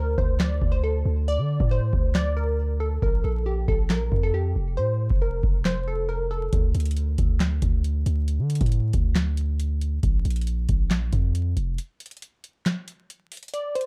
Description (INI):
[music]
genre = hip hop, trap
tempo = 137 BPM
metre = 4/4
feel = half-time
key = D minor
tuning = A4 = 438 Hz
[part]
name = glassy wavetable pluck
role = melody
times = 0.0-6.5, 13.5-13.9 s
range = G4 to D5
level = -32 LUFS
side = equal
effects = chorus
[part]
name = long sustained 808-style bass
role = bass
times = 0.0-11.8 s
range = F1 to D3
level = -26 LUFS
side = equal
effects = none
[part]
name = booming analog drum machine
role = drums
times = 0.2-13.9 s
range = handclaps, hi-hat, kick drum, snare drum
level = -26 LUFS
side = equal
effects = none
[sound]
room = little or no reverb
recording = dark, warm production, vinyl crackle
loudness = -24 LUFS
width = mono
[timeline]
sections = 0.0-13.9 A section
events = break 0.0-6.5, 11.8-13.5; kick muted 13.5-13.9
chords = 0.0 D5; 3.0 Bb5; 4.8 F; 6.5 D5; 10.0 Bb5; 11.8 N.C.